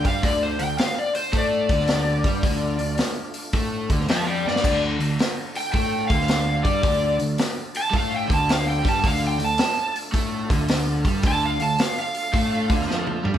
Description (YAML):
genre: blues rock power trio and southern rock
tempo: 109 BPM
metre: 4/4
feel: swing 66% on 8ths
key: D minor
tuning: A4 = 440 Hz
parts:
  - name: overdriven slide guitar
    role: melody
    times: 0.0-13.1 s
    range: C5 to A5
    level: -24 LUFS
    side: equal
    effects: none
  - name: overdriven tonewheel organ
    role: sustained chords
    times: 0.0-13.4 s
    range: F3 to Bb4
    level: -38 LUFS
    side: right 2 dB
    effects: chorus vibrato, fast rotary speaker
  - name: overdriven electric guitar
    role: riff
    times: 0.0-13.4 s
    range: D3 to A3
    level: -26 LUFS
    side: left 1 dB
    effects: none
  - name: vintage drum kit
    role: drums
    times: 0.0-13.4 s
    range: crash cymbal, hi-hat, kick drum, snare drum, toms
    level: -24 LUFS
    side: equal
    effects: none
  - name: fuzz picked electric bass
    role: bass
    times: 0.1-13.4 s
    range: D2 to A2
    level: -29 LUFS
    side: right 1 dB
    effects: overdrive
room: moderate large studio reverb, RT60 1.2 s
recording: band playing live in one room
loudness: -20 LUFS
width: side -10 dB against mid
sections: 0.0-13.4 A section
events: electric slide guitar solo 0.0-13.4; drum fill 4.4, 12.9-13.4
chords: 0.0 Dm